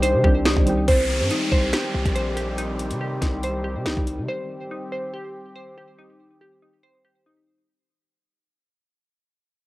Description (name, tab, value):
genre	hip hop, drill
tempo	141 BPM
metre	4/4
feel	half-time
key	C minor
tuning	A4 = 440 Hz
part	soft electric-piano-like synth keys	accompaniment	0.0-0.9 s	Eb3 to G4	-24 LUFS	right 1 dB	chorus, cassette tape
part	sweeping resonant pad	sustained chords	0.0-7.7 s	Eb3 to G4	-31 LUFS	left 1 dB	chorus, cassette tape
part	glassy wavetable pluck	arpeggios	0.0-7.7 s	Eb4 to C5	-26 LUFS	equal	chorus, cassette tape, tape echo
part	distorted 808-style bass	bass	0.0-4.3 s	Bb1 to C3	-26 LUFS	equal	distortion
part	drill drum kit	drums	0.0-4.2 s	finger snaps, hi-hat, kick drum, snare drum	-22 LUFS	equal	cassette tape
part	downlifter	sound effects	0.9-4.3 s	none	-31 LUFS	equal	none
room	light reverb, digital ambience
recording	home recording on cassette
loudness	-20 LUFS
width	side -18 dB against mid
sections	0.9-7.7 A section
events	fade-out 0.9-7.7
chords	0.0 Cm